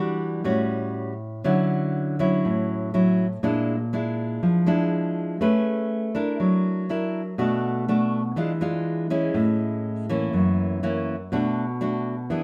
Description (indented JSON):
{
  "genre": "bossa nova",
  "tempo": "122 BPM",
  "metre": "4/4",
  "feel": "straight",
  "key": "A major",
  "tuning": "A4 = 440 Hz",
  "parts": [
    { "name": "nylon-string guitar", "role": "solo", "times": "0.0-12.4 s", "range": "F#2 to B4", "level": "-24 LUFS", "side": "equal", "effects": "none" }
  ],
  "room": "light reverb",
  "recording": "band playing live in one room",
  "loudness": "-24 LUFS",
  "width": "mono",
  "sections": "0.0-12.4 A section",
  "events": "none",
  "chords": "0.5 A6; 1.5 Dmaj9; 3.4 Bb7#11; 5.4 Amaj9; 6.4 F#7b13; 7.4 Bm7; 8.4 E7b9; 9.4 Amaj7; 10.3 F#7; 11.3 Bm7"
}